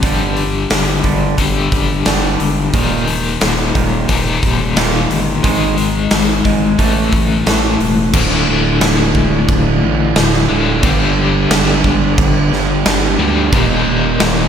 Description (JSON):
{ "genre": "quiet-loud alternative rock", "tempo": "89 BPM", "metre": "4/4", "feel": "straight", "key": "unclear", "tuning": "A4 = 439 Hz", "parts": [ { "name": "twangy electric guitar", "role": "arpeggios", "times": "0.0-8.1 s", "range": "Eb2 to A3", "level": "-22 LUFS", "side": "right 7 dB", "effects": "digital delay" }, { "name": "biting overdriven guitar", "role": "riff", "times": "0.0-14.5 s", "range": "D2 to A3", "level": "-16 LUFS", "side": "left 6 dB", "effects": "tremolo" }, { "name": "growling FM bass", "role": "bass", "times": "0.0-14.5 s", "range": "D1 to D2", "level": "-19 LUFS", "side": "equal", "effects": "none" }, { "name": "big rock drum kit", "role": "drums", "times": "0.0-14.4 s", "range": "crash cymbal, hi-hat, kick drum, snare drum", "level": "-16 LUFS", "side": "equal", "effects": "none" }, { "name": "percussive tonewheel organ", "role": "sustained chords", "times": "8.1-14.5 s", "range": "A3 to Eb5", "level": "-26 LUFS", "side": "right 4 dB", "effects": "none" }, { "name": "fuzz guitar", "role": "riff", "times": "8.1-14.5 s", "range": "D2 to G3", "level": "-19 LUFS", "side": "right 11 dB", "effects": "distortion" } ], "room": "light reverb", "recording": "none", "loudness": "-12 LUFS", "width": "side -8 dB against mid", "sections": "0.0-8.1 A section; 8.1-14.5 B section", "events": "none", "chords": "0.0 G5; 2.7 Eb5; 5.4 G#5; 6.8 A5; 8.1 Dm; 10.8 G; 13.5 Eb" }